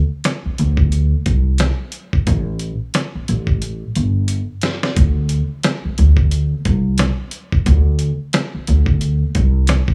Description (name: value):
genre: hip hop, boom-bap hip-hop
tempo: 89 BPM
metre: 4/4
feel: swing 59% on 16ths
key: unclear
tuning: A4 = 440 Hz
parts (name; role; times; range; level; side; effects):
- dusty soul sampler-style drum kit; drums; 0.2-9.9 s; hi-hat, kick drum, snare drum; -21 LUFS; equal; none
- upright bass; bass; 0.5-9.8 s; G1 to D2; -18 LUFS; equal; transformer saturation
room: little or no reverb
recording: dry, gritty hardware recording, transformer saturation, small room ambience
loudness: -18 LUFS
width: mono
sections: 0.0-5.0 A section; 5.0-9.9 B section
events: drum fill 3.6-5.0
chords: none